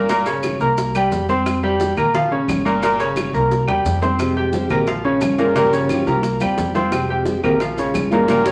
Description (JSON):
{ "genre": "latin, Cuban son and guajira", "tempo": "176 BPM", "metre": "4/4", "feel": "straight", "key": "F minor", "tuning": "A4 = 435 Hz", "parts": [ { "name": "bright baby grand piano", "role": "arpeggios", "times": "0.0-8.5 s", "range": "Bb2 to C6", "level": "-20 LUFS", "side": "equal", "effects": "none" }, { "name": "upright bass", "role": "bass", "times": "0.0-8.5 s", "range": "G1 to F2", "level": "-29 LUFS", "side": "equal", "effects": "none" }, { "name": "bongos", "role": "percussion", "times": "0.1-8.5 s", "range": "none", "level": "-30 LUFS", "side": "equal", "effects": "none" }, { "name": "congas", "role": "percussion", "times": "0.1-8.5 s", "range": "none", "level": "-31 LUFS", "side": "equal", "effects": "none" }, { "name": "maracas", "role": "percussion", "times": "0.1-8.5 s", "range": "none", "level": "-41 LUFS", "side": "equal", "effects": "none" }, { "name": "claves", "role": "percussion", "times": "0.4-8.1 s", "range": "none", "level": "-33 LUFS", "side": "equal", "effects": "none" }, { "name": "nylon-string guitar", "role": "accompaniment", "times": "4.2-8.5 s", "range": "C3 to G4", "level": "-25 LUFS", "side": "equal", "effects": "none" } ], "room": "wet studio reverb, RT60 0.8 s", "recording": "none", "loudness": "-18 LUFS", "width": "mono", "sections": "0.0-8.5 A section", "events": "drum fill 3.5-4.2, 8.3", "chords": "0.1 Gdim; 0.8 C7sus4; 1.5 Fsus2; 2.1 Bbm; 2.8 Gdim; 3.5 C7sus4; 4.2 Fmadd9; 4.9 Bbm7; 5.6 Gm7b5; 6.2 C7sus4; 6.9 Fmadd9; 7.6 Bbm7" }